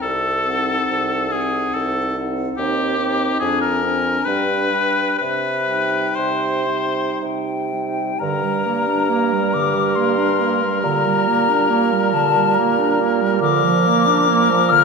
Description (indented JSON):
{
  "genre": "classical, slow romantic movement for wind quintet",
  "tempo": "54-73 BPM",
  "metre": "3/4",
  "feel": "rubato",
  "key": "C minor, G minor from 8.2 s",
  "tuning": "A4 = 440 Hz",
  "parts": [
    { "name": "mellow hollow silver concert flute", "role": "melody", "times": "0.0-14.8 s", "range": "Eb5 to F6", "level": "-22 LUFS", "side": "left 7 dB", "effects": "none" },
    { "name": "clear oboe", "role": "second line", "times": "0.0-14.8 s", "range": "G4 to C5", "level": "-21 LUFS", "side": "left 3 dB", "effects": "none" },
    { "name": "mellow bassoon", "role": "bass", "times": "0.0-14.8 s", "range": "C2 to C3", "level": "-23 LUFS", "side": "right 5 dB", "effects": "none" },
    { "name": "warm French horn", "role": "accompaniment", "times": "0.4-14.8 s", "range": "F3 to C4", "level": "-26 LUFS", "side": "right 2 dB", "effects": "none" },
    { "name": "clear clarinet", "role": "accompaniment", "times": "0.5-14.8 s", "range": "D3 to Eb4", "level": "-24 LUFS", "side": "right 5 dB", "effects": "none" }
  ],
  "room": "wet recital hall reverb, RT60 1.6 s",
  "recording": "minimal, uncompressed stereo recording",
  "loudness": "-16 LUFS",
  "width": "side -4 dB against mid",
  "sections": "0.0-8.2 A section; 8.2-14.8 B section",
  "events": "none",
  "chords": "0.0 Cdim7; 2.6 Cm/Eb; 3.4 Dm7b5/F; 4.3 G; 5.2 Cm; 8.2 Gm; 10.8 Gm/Bb; 13.4 Bb"
}